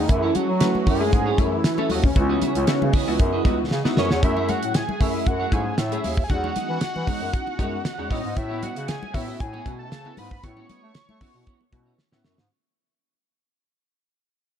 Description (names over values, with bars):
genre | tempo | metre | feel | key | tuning
early-eighties boogie funk | 116 BPM | 4/4 | straight | unclear | A4 = 441 Hz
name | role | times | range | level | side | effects
fat analog lead | melody | 0.0-12.0 s | C#4 to C#6 | -27 LUFS | right 1 dB | chorus, phaser
funky polysynth comp | accompaniment | 0.0-12.4 s | G#3 to B4 | -30 LUFS | left 3 dB | chorus
phased string machine | sustained chords | 0.0-12.5 s | C#3 to G#5 | -34 LUFS | right 1 dB | ensemble chorus, phaser
warm bass clarinet | bass | 0.0-12.5 s | C#2 to A3 | -27 LUFS | equal | none
clean electric guitar | riff | 0.1-12.4 s | G#3 to E5 | -32 LUFS | right 6 dB | lush chorus
damped 70s drum kit | drums | 0.1-12.5 s | hi-hat, kick drum, snare drum | -23 LUFS | equal | none
congas | percussion | 0.1-12.4 s | none | -32 LUFS | left 3 dB | none
room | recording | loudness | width
small room ambience | dark, warm production | -20 LUFS | side -9 dB against mid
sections
0.0-4.2 A section; 4.2-12.5 B section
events
drum fill 3.7-4.2, 12.0-12.5; fade-out 4.2-12.5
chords
0.0 F#m7; 2.2 C#m11; 4.2 F#m9; 6.3 Emaj13; 8.1 A69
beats
| 0.09 0.61 1.12 1.64 | 2.16 2.68 3.19 3.71 | 4.23 4.75 5.26 5.78 | 6.30 6.82 7.33 7.85 | 8.37 8.88 9.40 9.92 | 10.44 10.95 11.47 11.99